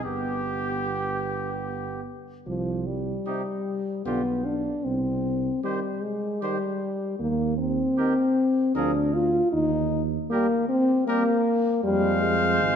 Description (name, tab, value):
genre	classical, brass quintet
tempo	77 BPM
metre	3/4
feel	straight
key	C minor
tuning	A4 = 438 Hz
part	bright trumpet	melody	0.0-12.8 s	G4 to F5	-32 LUFS	left 4 dB	none
part	clear flugelhorn	second line	0.0-12.8 s	Eb4 to C5	-35 LUFS	right 8 dB	none
part	clear trombone	accompaniment	0.0-12.8 s	C3 to B3	-35 LUFS	right 5 dB	none
part	dark French horn	accompaniment	0.0-12.8 s	F3 to F4	-24 LUFS	left 2 dB	none
part	dark tuba	bass	0.0-12.8 s	G1 to F2	-31 LUFS	right 6 dB	none
room	wet concert hall reverb, RT60 2.3 s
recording	none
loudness	-23 LUFS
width	side -8 dB against mid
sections	0.0-2.5 A section; 2.5-12.8 B section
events	none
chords	0.0 G; 2.5 C5; 4.1 G7/B; 4.8 Cm; 7.2 Eb5; 8.8 Bb7/D; 9.5 Eb; 11.8 Fm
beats	| 0.04 0.85 1.66 | 2.47 3.27 4.05 | 4.85 5.63 6.42 | 7.20 7.98 8.76 | 9.53 10.31 11.08 | 11.84 12.62